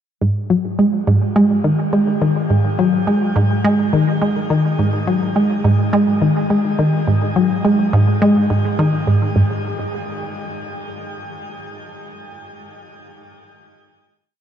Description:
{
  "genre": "ambient",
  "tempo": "105 BPM",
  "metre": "4/4",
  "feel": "straight",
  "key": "unclear",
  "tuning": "A4 = 441 Hz",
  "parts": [
    { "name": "resonant blip pluck", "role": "solo", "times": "0.2-9.6 s", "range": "G#2 to G#3", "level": "-15 LUFS", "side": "equal", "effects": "chorus, analog delay" }
  ],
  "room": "wet shimmer reverb, RT60 8.9 s",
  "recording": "cassette tape",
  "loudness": "-14 LUFS",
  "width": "side -9 dB against mid",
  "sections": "0.2-9.4 A section; 9.4-11.6 final note",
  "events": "none",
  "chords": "none",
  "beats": "| 0.22 0.79 1.36 1.93 | 2.50 3.07 3.65 4.22 | 4.79 5.36 5.93 6.50 | 7.07 7.64 8.22 8.79 | 9.36"
}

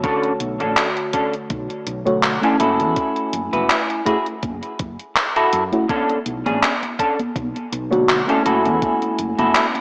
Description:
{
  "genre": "vaporwave",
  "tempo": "82 BPM",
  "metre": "4/4",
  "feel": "swing 54% on 16ths",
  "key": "F# minor",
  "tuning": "A4 = 440 Hz",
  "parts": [
    { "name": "mellow FM electric piano", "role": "accompaniment", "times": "0.0-9.8 s", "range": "D3 to G#5", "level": "-24 LUFS", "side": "equal", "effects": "subtle chorus, tape echo" },
    { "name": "semi-hollow electric guitar", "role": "riff", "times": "0.0-9.7 s", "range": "C#4 to B4", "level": "-23 LUFS", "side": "equal", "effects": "analog chorus, tape echo" },
    { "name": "electronic kick drum", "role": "drums", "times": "0.0-9.0 s", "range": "none", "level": "-31 LUFS", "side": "equal", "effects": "none" },
    { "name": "gated 80s digital drum machine", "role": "drums", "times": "0.0-9.8 s", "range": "congas, handclaps, hi-hat", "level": "-24 LUFS", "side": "equal", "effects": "gated reverb" },
    { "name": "woody fretless electric bass", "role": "bass", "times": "0.4-9.5 s", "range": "E1 to F#2", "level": "-30 LUFS", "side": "equal", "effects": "tube saturation, lush chorus" }
  ],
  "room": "moderate concert hall reverb, RT60 2.1 s",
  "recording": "cassette tape, small speaker sound",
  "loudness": "-20 LUFS",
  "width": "mono",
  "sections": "0.0-9.8 A section",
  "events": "none",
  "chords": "0.0 Bm9; 2.6 F#m7; 5.9 Bm9; 8.5 F#m7",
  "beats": "| 0.04 0.77 1.50 2.23 | 2.97 3.70 4.43 5.16 | 5.89 6.62 7.36 8.09 | 8.82 9.55"
}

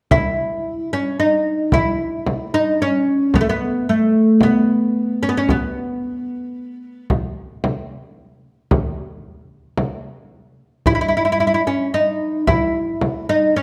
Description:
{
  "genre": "Turkish makam ensemble",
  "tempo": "112 BPM (eighths)",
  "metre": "10/8",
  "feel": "straight",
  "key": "unclear",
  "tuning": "A4 = 440 Hz",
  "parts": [
    { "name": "oud", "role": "melody", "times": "0.1-13.6 s", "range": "A3 to E4", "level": "-19 LUFS", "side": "equal", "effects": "none" },
    { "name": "frame drum", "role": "percussion", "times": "0.1-13.3 s", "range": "none", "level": "-23 LUFS", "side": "equal", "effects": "none" }
  ],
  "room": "moderate recital hall reverb, RT60 1.4 s",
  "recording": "none",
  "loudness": "-19 LUFS",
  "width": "mono",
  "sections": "0.1-13.6 A section",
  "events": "none",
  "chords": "none",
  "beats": "| 0.11 0.65 1.18 1.72 2.26 2.79 3.33 3.87 4.41 4.95 | 5.48 6.02 6.56 7.09 7.63 8.17 8.71 9.24 9.78 10.32 | 10.86 11.39 11.93 12.47 13.01 13.54"
}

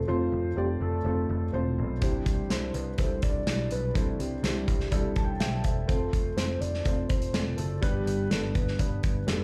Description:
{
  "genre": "piano-driven pop",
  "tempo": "124 BPM",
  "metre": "4/4",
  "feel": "straight",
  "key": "C major",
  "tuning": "A4 = 440 Hz",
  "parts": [
    { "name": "soft octave-layered synth lead", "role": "melody", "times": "0.0-9.4 s", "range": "F4 to D5", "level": "-37 LUFS", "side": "equal", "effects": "chorus, phaser, slapback echo" },
    { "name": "dark upright piano", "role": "accompaniment", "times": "0.0-9.4 s", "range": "G2 to A5", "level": "-35 LUFS", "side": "equal", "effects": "slapback echo" },
    { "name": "overdriven picked electric bass", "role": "bass", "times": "0.0-9.4 s", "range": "E1 to C2", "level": "-33 LUFS", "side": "equal", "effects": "none" },
    { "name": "loose indie drum kit", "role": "drums", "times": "2.0-9.4 s", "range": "hi-hat, kick drum, snare drum", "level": "-31 LUFS", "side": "equal", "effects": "none" }
  ],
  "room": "light reverb",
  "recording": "live gig heard through the venue's PA, club reverb",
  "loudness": "-28 LUFS",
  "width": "mono",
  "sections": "0.0-9.4 A section",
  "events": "upright piano fill 4.9-5.9",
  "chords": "0.0 F; 2.0 Cadd9; 5.9 F; 7.8 G",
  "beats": "| 0.08 0.57 1.05 1.53 | 2.02 2.50 2.98 3.47 | 3.95 4.44 4.92 5.40 | 5.89 6.37 6.86 7.34 | 7.83 8.31 8.79 9.28"
}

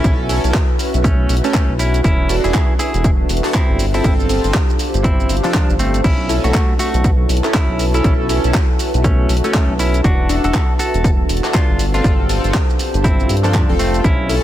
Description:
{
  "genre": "deep house",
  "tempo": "120 BPM",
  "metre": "4/4",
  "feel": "swing 60% on 16ths",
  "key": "B minor",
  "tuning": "A4 = 440 Hz",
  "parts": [
    { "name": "clean electric guitar", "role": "melody", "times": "0.0-14.3 s", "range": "F3 to A4", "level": "-23 LUFS", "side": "equal", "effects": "vintage 12-bit sampler grit, analog delay" },
    { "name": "deep dark ambient pad", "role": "sustained chords", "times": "0.0-14.4 s", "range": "B3 to A4", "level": "-26 LUFS", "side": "equal", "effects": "chorus, built-in reverb, sidechain pumping" },
    { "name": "chorused polysynth", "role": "stabs", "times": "0.0-14.4 s", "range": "C4 to A4", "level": "-23 LUFS", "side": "equal", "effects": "analog delay" },
    { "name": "round analog bass", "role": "bass", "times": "0.0-14.4 s", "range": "E1 to G2", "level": "-18 LUFS", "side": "equal", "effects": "sidechain pumping" },
    { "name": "deep house drum kit", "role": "drums", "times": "0.0-14.4 s", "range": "crash cymbal, handclaps, hi-hat, shaker", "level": "-24 LUFS", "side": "equal", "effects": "none" },
    { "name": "electronic kick drum", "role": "drums", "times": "0.0-14.2 s", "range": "none", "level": "-16 LUFS", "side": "equal", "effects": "none" },
    { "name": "airy breathy pad", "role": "texture", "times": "0.0-14.4 s", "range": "F#4 to A5", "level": "-26 LUFS", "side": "equal", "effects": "chorus, sidechain pumping" }
  ],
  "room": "little or no reverb",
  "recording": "dense, heavily limited modern master",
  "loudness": "-13 LUFS",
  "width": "side -12 dB against mid",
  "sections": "0.0-14.4 A section",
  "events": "none",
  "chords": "0.0 B9sus4; 2.0 E9sus4; 3.8 G9sus4; 6.0 B9sus4; 10.0 E9sus4; 11.8 G9sus4",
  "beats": "| 0.04 0.54 1.04 1.54 | 2.04 2.54 3.04 3.54 | 4.04 4.54 5.04 5.54 | 6.04 6.54 7.04 7.54 | 8.04 8.54 9.04 9.54 | 10.04 10.54 11.04 11.54 | 12.04 12.54 13.04 13.54 | 14.04"
}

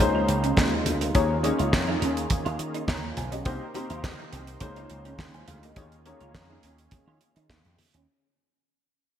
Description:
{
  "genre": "early-eighties boogie funk",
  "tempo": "104 BPM",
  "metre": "4/4",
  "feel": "straight",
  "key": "unclear",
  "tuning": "A4 = 439 Hz",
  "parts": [
    { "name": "dark baby grand piano", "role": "accompaniment", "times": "0.0-6.8 s", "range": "Bb3 to Bb5", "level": "-29 LUFS", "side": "left 3 dB", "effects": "analog chorus" },
    { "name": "warm analog pad", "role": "sustained chords", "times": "0.0-8.1 s", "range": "C3 to C5", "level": "-34 LUFS", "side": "right 1 dB", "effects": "chorus" },
    { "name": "slap bass with an envelope filter", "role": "bass", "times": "0.0-8.1 s", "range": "Cb2 to Eb3", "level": "-30 LUFS", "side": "equal", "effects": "none" },
    { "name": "damped 70s drum kit", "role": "drums", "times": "0.0-8.1 s", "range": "handclaps, hi-hat, kick drum, snare drum", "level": "-26 LUFS", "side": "equal", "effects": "gated reverb" },
    { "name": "congas", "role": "percussion", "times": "0.0-7.9 s", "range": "none", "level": "-36 LUFS", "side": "left 2 dB", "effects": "none" },
    { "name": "semi-hollow electric guitar", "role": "riff", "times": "0.1-8.0 s", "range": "Bb3 to F4", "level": "-34 LUFS", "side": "right 5 dB", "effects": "ensemble chorus" }
  ],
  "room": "moderate lush hall reverb, RT60 2.0 s, small room ambience",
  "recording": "bright 1980s-style digital production",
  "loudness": "-24 LUFS",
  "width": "side -10 dB against mid",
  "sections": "0.0-8.1 A section",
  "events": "fade-out 0.0-8.1",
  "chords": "0.0 Bbm11/Db; 1.1 Eb7sus4; 3.5 Cm7; 4.6 Bbm11/Db; 5.8 Eb7sus4",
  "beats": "0.00 0.57 | 1.15 1.73 2.30 2.88 | 3.46 4.04 4.61 5.19 | 5.77 6.34 6.92 7.50"
}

